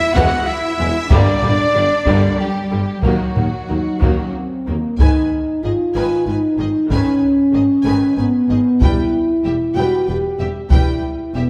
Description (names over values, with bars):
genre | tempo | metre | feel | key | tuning
cinematic, epic orchestral film score | 94 BPM | 3/4 | straight | unclear | A4 = 441 Hz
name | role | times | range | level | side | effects
warm symphonic violin section | melody | 0.0-11.4 s | F#4 to G#5 | -29 LUFS | equal | none
dark trumpet | stabs | 0.0-4.3 s | F#4 to F#5 | -23 LUFS | equal | none
rich symphonic cello section | bass | 0.0-11.4 s | E2 to F#4 | -28 LUFS | equal | none
clear symphonic violin section | second line | 0.2-11.4 s | G3 to B4 | -32 LUFS | equal | none
rich symphonic viola section | accompaniment | 0.2-11.4 s | D3 to G#3 | -29 LUFS | equal | none
clear tuba | bass | 0.2-4.8 s | E1 to D#2 | -29 LUFS | equal | none
rich symphonic double bass section | bass | 0.2-11.4 s | E1 to G2 | -25 LUFS | equal | none
taiko ensemble | drums | 0.2-11.3 s | none | -20 LUFS | equal | none
dark French horn section | sustained chords | 1.1-11.5 s | F#3 to G4 | -19 LUFS | equal | none
room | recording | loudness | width
wet scoring stage reverb, RT60 1.7 s | none | -17 LUFS | mono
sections
0.0-5.0 A section; 5.0-11.5 B section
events
none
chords
0.0 E; 1.1 Gm; 3.0 D#m; 5.0 G#m; 8.8 Em